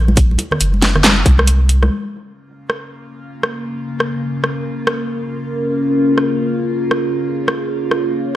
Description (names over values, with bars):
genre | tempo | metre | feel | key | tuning
deep dubstep | 138 BPM | 4/4 | swing 61% on 16ths, half-time | Bb minor | A4 = 440 Hz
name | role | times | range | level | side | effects
soft dub sub bass | bass | 0.0-1.9 s | Gb1 to C2 | -13 LUFS | equal | none
congas | percussion | 0.1-1.9 s | none | -22 LUFS | equal | dub echo
dubstep drum kit | drums | 0.2-8.0 s | handclaps, hi-hat, rim click, snare drum | -16 LUFS | equal | none
electronic kick drum | drums | 0.2-1.4 s | none | -13 LUFS | equal | none
overtone-sweeping drone | sustained chords | 3.5-8.4 s | Db3 to F4 | -18 LUFS | equal | chorus, built-in reverb, phaser
room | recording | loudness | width
moderate echo chamber reverb, RT60 1.4 s, digital ambience | dry, gritty hardware recording, lossy compression artefacts | -14 LUFS | side -13 dB against mid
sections
0.0-1.9 A section; 1.9-8.4 B section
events
filter sweep on synth drone 1.9-8.4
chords
0.0 Gb; 1.9 Bbm